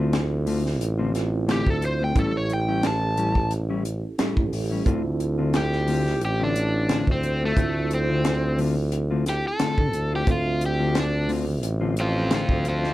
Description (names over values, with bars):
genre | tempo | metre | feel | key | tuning
straight-eighth soul blues | 89 BPM | 4/4 | swing 54% on 16ths | D minor | A4 = 439 Hz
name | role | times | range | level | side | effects
mellow tine electric piano | accompaniment | 0.0-12.9 s | C4 to E5 | -31 LUFS | right 5 dB | fast stereo tremolo
mellow electric guitar | stabs | 0.0-12.9 s | A2 to F4 | -28 LUFS | left 4 dB | none
warm tuba | bass | 0.0-12.9 s | A1 to D3 | -25 LUFS | equal | none
tight funk drum kit | drums | 0.1-12.9 s | hi-hat, kick drum, snare drum | -26 LUFS | equal | none
overdriven electric guitar | melody | 1.5-12.9 s | A3 to A5 | -26 LUFS | equal | none
room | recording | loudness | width
little or no reverb | none | -21 LUFS | side -16 dB against mid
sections
0.0-4.9 A section; 4.9-12.9 B section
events
overdriven electric guitar solo 4.9-12.9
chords
0.0 Dm7; 2.2 A7; 4.9 Dm7